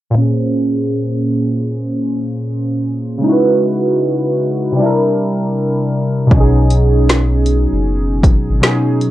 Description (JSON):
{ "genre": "lo-fi hip hop", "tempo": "78 BPM", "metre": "4/4", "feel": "swing 62% on 16ths", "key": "unclear", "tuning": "A4 = 440 Hz", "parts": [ { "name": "warbly lo-fi synth keys", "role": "accompaniment", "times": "0.1-9.1 s", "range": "Bb2 to C5", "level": "-14 LUFS", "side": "equal", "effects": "chorus, phaser, cassette tape, low-pass filter" }, { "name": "soft dub sub bass", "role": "bass", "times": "6.3-8.6 s", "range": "F#1 to B1", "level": "-15 LUFS", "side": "equal", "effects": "none" }, { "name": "deep house drum kit", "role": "drums", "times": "6.3-9.1 s", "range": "finger snaps, hi-hat, kick drum, snare drum", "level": "-12 LUFS", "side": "equal", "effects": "vintage 12-bit sampler grit" } ], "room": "moderate small room reverb, RT60 0.5 s", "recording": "cassette tape", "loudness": "-12 LUFS", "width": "side -14 dB against mid", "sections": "0.2-9.1 A section", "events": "filter sweep on synth keys 0.2-9.1", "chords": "0.2 Bbm9; 3.2 Dbm11; 4.8 C9; 6.3 B69" }